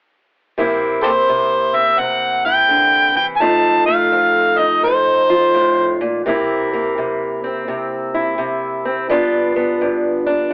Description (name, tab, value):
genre	acoustic country blues, solo or duo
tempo	84 BPM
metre	4/4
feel	swing 65% on 8ths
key	C mixolydian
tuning	A4 = 442 Hz
part	fingerpicked steel-string acoustic guitar	accompaniment	0.6-10.5 s	F2 to F4	-20 LUFS	equal	cassette tape
part	overdriven harmonica	melody	1.0-6.0 s	G4 to A5	-16 LUFS	equal	cassette tape
room	wet booth ambience, RT60 0.2 s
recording	home recording on cassette, telephone sound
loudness	-17 LUFS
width	mono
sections	0.6-10.5 A section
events	none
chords	0.6 C7; 3.4 F7; 6.2 C7; 9.1 G7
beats	| 0.56 1.27 1.98 2.69 | 3.41 4.12 4.83 5.54 | 6.25 6.96 7.67 8.38 | 9.09 9.80 10.51